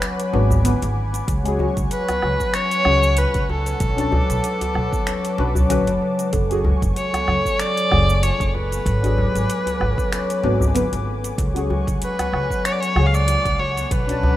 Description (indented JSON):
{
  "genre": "organic downtempo",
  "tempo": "95 BPM",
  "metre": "4/4",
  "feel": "swing 56% on 16ths",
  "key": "unclear",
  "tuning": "A4 = 439 Hz",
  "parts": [
    { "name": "clear kamancheh", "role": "melody", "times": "0.0-14.4 s", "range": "A4 to E#5", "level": "-23 LUFS", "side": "equal", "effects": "tape echo" },
    { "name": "deep mellow chord stab", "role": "accompaniment", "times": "0.0-14.4 s", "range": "C#3 to A5", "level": "-26 LUFS", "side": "left 2 dB", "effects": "chorus, phaser, sidechain pumping, tape echo" },
    { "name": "airy breathy pad", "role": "sustained chords", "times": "0.0-14.4 s", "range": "B4 to D6", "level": "-31 LUFS", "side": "left 1 dB", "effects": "chorus, vintage 12-bit sampler grit, sidechain pumping" },
    { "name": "concert harp", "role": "arpeggios", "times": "0.0-14.4 s", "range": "C#3 to F#4", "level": "-26 LUFS", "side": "left 2 dB", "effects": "tape echo" },
    { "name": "afro-pop drum kit", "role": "drums", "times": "0.0-14.2 s", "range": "finger snaps, hi-hat, shaker, woodblock", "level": "-29 LUFS", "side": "right 2 dB", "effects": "studio reverb" },
    { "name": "djembe", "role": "percussion", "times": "0.0-14.4 s", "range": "none", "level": "-24 LUFS", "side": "equal", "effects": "none" },
    { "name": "upright bass", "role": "bass", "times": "0.3-14.3 s", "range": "F#1 to C#2", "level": "-22 LUFS", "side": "equal", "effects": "sidechain pumping" },
    { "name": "electronic kick drum", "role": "drums", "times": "1.3-14.1 s", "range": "none", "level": "-25 LUFS", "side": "equal", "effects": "studio reverb" },
    { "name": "quartz singing bowl", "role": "texture", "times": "6.3-14.4 s", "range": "A4", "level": "-33 LUFS", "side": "right 5 dB", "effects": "stereo widening" }
  ],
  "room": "light reverb, small room ambience",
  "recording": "rough home demo mix",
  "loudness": "-17 LUFS",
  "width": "side -14 dB against mid",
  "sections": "0.0-14.4 A section",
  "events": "none",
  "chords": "0.0 G#m7b5; 1.3 C#sus4; 3.8 Bm7; 6.3 F#madd9; 8.9 G#m7b5; 11.4 C#sus4"
}